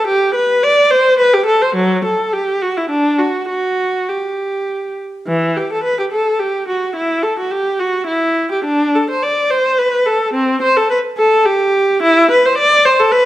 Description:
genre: classical, baroque-style suite movement for unaccompanied viola.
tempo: 99-111 BPM.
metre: 3/4.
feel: rubato.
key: G major.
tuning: A4 = 441 Hz.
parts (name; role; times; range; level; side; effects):
rich viola; solo; 0.0-13.3 s; E3 to D5; -12 LUFS; equal; none.
room: moderate recital hall reverb, RT60 1.2 s.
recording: none.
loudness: -12 LUFS.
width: side -14 dB against mid.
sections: 0.0-5.3 A section; 5.3-13.3 A section.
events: none.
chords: none.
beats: | 0.08 0.63 1.18 | 1.76 2.33 2.90 | 3.50 4.09 4.68 | 5.28 5.85 6.41 | 6.97 7.52 8.08 | 8.65 9.23 9.78 | 10.34 10.90 11.45 | 12.02 12.58 13.12.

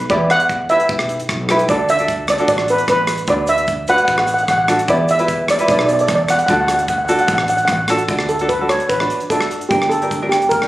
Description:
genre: calypso.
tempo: 150 BPM.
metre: 4/4.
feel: straight.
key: D major.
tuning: A4 = 440 Hz.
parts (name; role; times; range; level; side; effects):
steel pan; melody; 0.0-10.7 s; G4 to F#5; -16 LUFS; right 1 dB; none.
upright bass; bass; 0.0-10.7 s; G1 to E2; -24 LUFS; equal; none.
tight funk drum kit; drums; 0.0-10.7 s; hi-hat, kick drum, rim click; -23 LUFS; equal; none.
tenor ukulele; accompaniment; 0.1-10.7 s; D4 to B4; -20 LUFS; equal; none.
tube shaker; percussion; 1.7-10.6 s; none; -37 LUFS; right 2 dB; none.
room: moderate recital hall reverb, RT60 1.4 s.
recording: recorded on a phone in the room, club reverb.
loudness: -14 LUFS.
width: side -16 dB against mid.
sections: 0.0-8.1 A section; 8.1-10.7 B section.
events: steel pan solo 8.1-10.7.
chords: 0.0 Em; 1.7 D6; 4.9 Em; 6.5 D; 9.7 Gm.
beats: | 0.10 0.50 0.90 1.29 | 1.69 2.09 2.49 2.89 | 3.29 3.69 4.09 4.49 | 4.89 5.29 5.69 6.09 | 6.49 6.89 7.29 7.69 | 8.10 8.50 8.90 9.30 | 9.71 10.11 10.51.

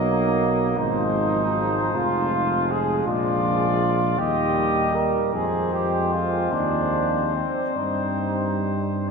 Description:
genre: classical, hymn-like piece for brass band.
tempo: 45-54 BPM (dotted quarters).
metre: 6/8.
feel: rubato.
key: C minor.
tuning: A4 = 442 Hz.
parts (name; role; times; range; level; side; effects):
warm trumpet section; melody; 0.0-9.1 s; C5 to Eb5; -28 LUFS; left 7 dB; none.
warm flugelhorn; second line; 0.0-9.1 s; A#3 to Bb4; -24 LUFS; right 4 dB; none.
bright trombone; accompaniment; 0.0-9.1 s; Eb3 to Ab3; -32 LUFS; right 1 dB; none.
bright trombone section; accompaniment; 0.0-9.1 s; G3 to C4; -30 LUFS; left 3 dB; none.
mellow tuba; bass; 0.0-9.1 s; F1 to G2; -26 LUFS; equal; none.
room: wet cathedral reverb, RT60 4.8 s.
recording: minimal, uncompressed stereo recording.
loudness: -20 LUFS.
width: side -5 dB against mid.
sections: 0.0-9.1 A section.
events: none.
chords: 0.0 Bmaj7; 0.8 Ab6; 1.9 Fm; 3.1 Bb7; 4.2 Eb; 5.3 Fm; 6.5 Cm/Eb; 7.8 Cm/G.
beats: | 0.79 1.95 | 3.07 4.18 | 5.34 6.53 | 7.77 9.09.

